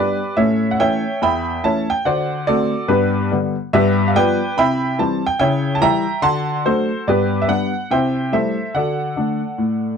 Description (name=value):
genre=jazz, stride piano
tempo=143 BPM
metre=4/4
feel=swing 65% on 8ths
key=G major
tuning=A4 = 441 Hz
part: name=clear upright piano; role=solo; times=0.0-10.0 s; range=E2 to C6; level=-16 LUFS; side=equal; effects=none
room=light reverb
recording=close, detailed microphones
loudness=-16 LUFS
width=side -6 dB against mid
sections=0.0-10.0 A section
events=none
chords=0.4 A7; 2.0 D7; 2.9 G; 3.7 G7; 4.6 C; 5.4 C#dim7; 6.2 D7; 7.1 G; 7.9 C6; 8.7 D